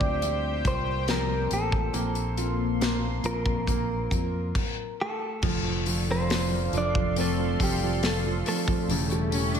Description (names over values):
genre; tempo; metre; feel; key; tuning
pop ballad; 70 BPM; 4/4; straight; F major; A4 = 440 Hz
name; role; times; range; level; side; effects
direct-recorded clean electric guitar; melody; 0.0-9.6 s; G3 to D5; -31 LUFS; equal; spring reverb, digital delay
warm concert grand piano; accompaniment; 0.0-9.6 s; C#3 to F4; -32 LUFS; right 5 dB; slapback echo
sweeping resonant pad; sustained chords; 0.0-9.6 s; Bb3 to C#6; -35 LUFS; left 2 dB; chorus
picked steel-string acoustic guitar; arpeggios; 0.0-9.6 s; E2 to Bb4; -35 LUFS; left 8 dB; digital delay
fingered electric bass; bass; 0.0-9.6 s; E1 to F2; -30 LUFS; equal; none
modern studio drum kit; drums; 0.0-9.6 s; crash cymbal, hi-hat, kick drum, snare drum; -30 LUFS; left 1 dB; none
clear chamber cello section; second line; 9.3-9.6 s; C#4 to D4; -30 LUFS; left 1 dB; none
room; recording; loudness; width
moderate scoring stage reverb, RT60 1.9 s, studio reverb; big arena sound; -24 LUFS; side -8 dB against mid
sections
0.0-5.4 A section; 5.4-9.6 B section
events
stop 4.5-5.4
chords
0.0 C7sus4; 1.9 Bbsus2; 5.4 F6; 8.9 A7/E